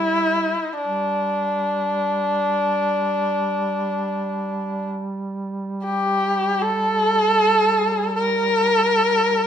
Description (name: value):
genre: caucasian folk, Caucasian lament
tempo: free time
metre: none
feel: none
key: G dorian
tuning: A4 = 438 Hz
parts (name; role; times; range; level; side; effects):
- warm erhu; melody; 0.0-9.5 s; D4 to Bb4; -19 LUFS; equal; slapback echo
- mellow duduk; drone; 0.0-9.5 s; G3; -28 LUFS; right 2 dB; none
room: light reverb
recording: close, detailed microphones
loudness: -19 LUFS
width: side -9 dB against mid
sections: 0.0-9.5 A section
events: none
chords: none